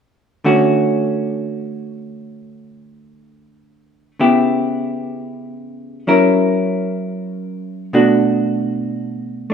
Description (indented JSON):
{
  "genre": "jazz",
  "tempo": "64 BPM",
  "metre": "4/4",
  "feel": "swing 67% on 8ths",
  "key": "D major",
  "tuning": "A4 = 441 Hz",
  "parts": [
    { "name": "vintage hollow-body jazz guitar", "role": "accompaniment", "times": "0.4-9.5 s", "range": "B2 to A#4", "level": "-16 LUFS", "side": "equal", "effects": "none" }
  ],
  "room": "moderate plate reverb, RT60 2.5 s",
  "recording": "none",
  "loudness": "-15 LUFS",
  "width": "side -6 dB against mid",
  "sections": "0.4-9.5 A section",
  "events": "none",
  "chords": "0.4 Dmaj7; 4.2 C#m7b5; 6.1 F#7; 7.9 Bm7",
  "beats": "| 0.44 1.38 2.32 3.26 | 4.20 5.13 6.07 7.01 | 7.95 8.89"
}